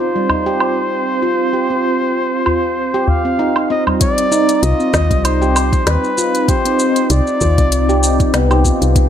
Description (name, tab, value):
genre	organic downtempo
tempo	97 BPM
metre	4/4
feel	swing 55% on 16ths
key	C harmonic minor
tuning	A4 = 440 Hz
part	trumpet with bucket mute	melody	0.0-8.6 s	B4 to F5	-19 LUFS	equal	tape echo
part	warm analog pad	sustained chords	0.0-9.1 s	C4 to F4	-20 LUFS	right 2 dB	chorus, tremolo, sidechain pumping
part	handpan	arpeggios	0.0-9.1 s	G3 to C5	-19 LUFS	equal	tape echo
part	organic electronic drum kit	drums	0.3-9.1 s	hi-hat, shaker, snare drum, woodblock	-20 LUFS	equal	overdrive, low-pass filter on perc, low-pass filter on hats, low-pass filter on snare
part	udu	percussion	0.3-4.0 s	none	-19 LUFS	left 1 dB	none
part	electronic kick drum	drums	4.0-9.1 s	none	-17 LUFS	equal	overdrive
part	woody FM bass	bass	4.6-9.1 s	C2 to Eb2	-15 LUFS	equal	sidechain pumping
room	light reverb, studio ambience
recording	none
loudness	-12 LUFS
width	side -9 dB against mid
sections	0.0-4.0 A section; 4.0-9.1 B section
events	none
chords	0.0 C5; 4.0 Cmadd9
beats	0.30 0.92 | 1.53 2.15 2.77 3.39 | 4.01 4.63 5.25 5.86 | 6.48 7.10 7.72 8.34 | 8.96